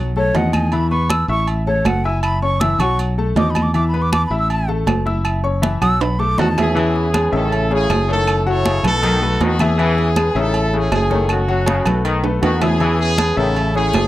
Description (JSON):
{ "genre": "latin, salsa", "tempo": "159 BPM", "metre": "4/4", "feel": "straight", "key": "E major", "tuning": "A4 = 439 Hz", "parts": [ { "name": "clear concert grand piano", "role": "accompaniment", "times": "0.0-14.1 s", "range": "C#3 to E6", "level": "-22 LUFS", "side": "left 4 dB", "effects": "none" }, { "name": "fingered electric bass", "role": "bass", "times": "0.0-14.1 s", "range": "F#1 to E2", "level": "-19 LUFS", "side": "equal", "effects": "none" }, { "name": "breathy mellow silver concert flute", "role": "melody", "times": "0.2-6.8 s", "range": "C#5 to E6", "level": "-21 LUFS", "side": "right 1 dB", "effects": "none" }, { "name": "congas", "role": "percussion", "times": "0.2-14.1 s", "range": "none", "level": "-24 LUFS", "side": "equal", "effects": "none" }, { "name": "timbales and agogo bells", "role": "percussion", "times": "0.3-14.1 s", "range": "none", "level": "-24 LUFS", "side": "right 5 dB", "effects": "none" }, { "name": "claves", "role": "percussion", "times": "0.5-14.1 s", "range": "none", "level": "-30 LUFS", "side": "left 5 dB", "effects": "none" }, { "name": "clear horn section", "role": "melody", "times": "6.4-14.1 s", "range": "A3 to C#5", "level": "-20 LUFS", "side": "equal", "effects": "none" }, { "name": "bright trombone section", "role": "second line", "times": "6.8-13.9 s", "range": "C#3 to E3", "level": "-24 LUFS", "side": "left 2 dB", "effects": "none" } ], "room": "light reverb", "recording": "dry, close 1970s-style studio recording", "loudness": "-15 LUFS", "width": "side -15 dB against mid", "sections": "0.0-6.8 A section; 6.8-14.1 B section", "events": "flute solo 0.0-6.8; drum fill 6.0-6.8, 12.2-12.8", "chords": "0.0 B7; 0.7 E5; 1.5 A5; 2.2 F#5; 3.0 B7; 3.7 E5; 4.5 A5; 5.3 F#5; 6.0 B7; 6.8 E6; 7.5 Amaj7; 8.3 F#m7; 9.0 B7; 9.8 E6; 10.5 Amaj7; 11.3 F#m; 12.1 B7; 12.8 E6; 13.6 Amaj7", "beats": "0.35 | 0.72 1.10 1.48 1.86 | 2.24 2.61 2.99 3.37 | 3.75 4.12 4.50 4.88 | 5.26 5.63 6.01 6.39 | 6.77 7.14 7.52 7.90 | 8.28 8.65 9.03 9.41 | 9.79 10.16 10.54 10.92 | 11.30 11.67 12.05 12.43 | 12.81 13.18 13.56 13.94" }